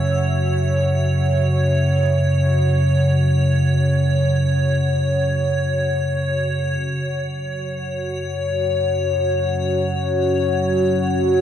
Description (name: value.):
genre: dark ambient drone.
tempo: free time.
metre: none.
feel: none.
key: unclear.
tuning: A4 = 441 Hz.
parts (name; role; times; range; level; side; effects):
sweeping resonant pad; sustained chords; 0.0-11.4 s; F#3 to E5; -26 LUFS; right 1 dB; chorus.
deep rumbling drone; drone; 0.0-11.4 s; F#2 to C#3; -19 LUFS; equal; built-in reverb, phaser.
icy glass pad; texture; 0.0-11.4 s; C#5; -22 LUFS; left 1 dB; chorus, built-in reverb.
room: moderate huge ambient reverb, RT60 7.9 s.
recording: worn, warbling old tape, cassette tape, warbly pitch drift.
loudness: -17 LUFS.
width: side -10 dB against mid.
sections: 0.0-6.8 A section; 6.8-11.4 B section.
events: fade-out on analog synth pad 0.0-6.8.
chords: 0.0 F#5.